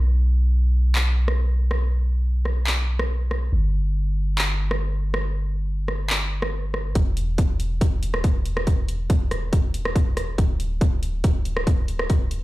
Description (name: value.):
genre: future bass.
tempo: 140 BPM.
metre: 4/4.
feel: half-time.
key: E minor.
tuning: A4 = 440 Hz.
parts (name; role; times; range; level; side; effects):
long sustained 808-style bass; bass; 0.0-12.4 s; D1 to B1; -22 LUFS; equal; sidechain pumping.
dubstep drum kit; drums; 1.0-12.4 s; handclaps, hi-hat, rim click; -27 LUFS; equal; high-pass filter on snare, high-pass filter on hats.
electronic kick drum; drums; 7.0-12.2 s; none; -19 LUFS; equal; none.
room: little or no reverb.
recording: played on a big sound system in a bare room, large studio reverb.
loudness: -20 LUFS.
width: side -18 dB against mid.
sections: 0.0-7.0 A section; 7.0-12.4 B section.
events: build-up 7.0-12.4.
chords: none.